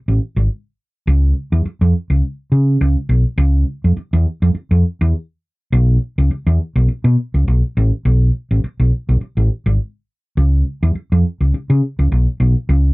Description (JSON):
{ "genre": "funk", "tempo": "103 BPM", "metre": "4/4", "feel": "swing 56% on 16ths", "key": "Db mixolydian", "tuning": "A4 = 437 Hz", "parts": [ { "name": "hollow-body short-scale fingered electric bass", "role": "solo", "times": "0.1-12.9 s", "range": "Ab1 to Db3", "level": "-13 LUFS", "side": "equal", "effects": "none" } ], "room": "light reverb", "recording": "none", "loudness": "-14 LUFS", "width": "side -23 dB against mid", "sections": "0.0-1.1 A section; 1.1-12.9 B section", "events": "none", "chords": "none" }